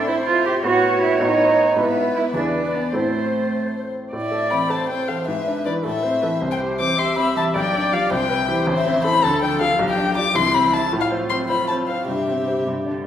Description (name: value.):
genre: quick classical-period movement for piano quartet.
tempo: 106 BPM (dotted quarters).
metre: 6/8.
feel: straight.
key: A minor, C major from 8.7 s.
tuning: A4 = 440 Hz.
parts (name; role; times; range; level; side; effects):
dark violin; melody; 0.0-12.7 s; B4 to D6; -22 LUFS; left 5 dB; none.
warm cello; second line; 0.0-13.1 s; C3 to G4; -23 LUFS; right 3 dB; none.
clear baby grand piano; accompaniment; 0.0-13.1 s; A1 to E5; -24 LUFS; equal; none.
dark viola; accompaniment; 0.0-12.9 s; E4 to E5; -25 LUFS; right 1 dB; none.
room: wet recital hall reverb, RT60 1.4 s.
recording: heard from further back in the room.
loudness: -17 LUFS.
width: side -10 dB against mid.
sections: 0.0-4.1 A section; 4.1-13.1 B section.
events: none.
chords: 0.0 Am; 0.6 B7/A; 1.8 E/G#; 2.4 E7; 2.9 Am; 5.3 E7/G#; 5.8 Am; 6.4 C; 7.5 G7/B; 8.1 C; 8.7 Am; 9.2 Dm; 9.8 G7/B; 10.4 C; 10.9 F/A; 12.1 C/G.